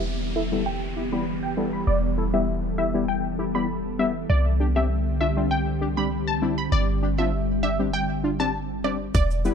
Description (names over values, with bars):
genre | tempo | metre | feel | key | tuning
dancehall | 99 BPM | 4/4 | straight | E minor | A4 = 440 Hz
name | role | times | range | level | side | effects
analog pluck | melody | 0.0-9.2 s | D5 to B5 | -29 LUFS | equal | chorus, low-pass filter, digital delay
synth brass stab | accompaniment | 0.0-9.5 s | G3 to B4 | -28 LUFS | left 2 dB | chorus, low-pass filter
ethereal airy pad | sustained chords | 0.0-9.1 s | D3 to A4 | -28 LUFS | equal | ensemble chorus, built-in reverb, sidechain pumping, low-pass filter
clean 808-style bass | bass | 0.0-9.5 s | E1 to C2 | -27 LUFS | equal | none
downlifter | sound effects | 0.0-4.3 s | none | -41 LUFS | right 1 dB | none
island pop drum kit | drums | 9.1-9.3 s | hi-hat, kick drum | -22 LUFS | equal | none
tube shaker | percussion | 9.1-9.5 s | none | -44 LUFS | right 9 dB | none
room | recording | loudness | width
light reverb | dark, warm production | -22 LUFS | side -7 dB against mid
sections
0.0-9.1 A section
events
filter sweep 0.0-9.1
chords
0.0 Em; 4.3 Csus2; 6.7 Gsus4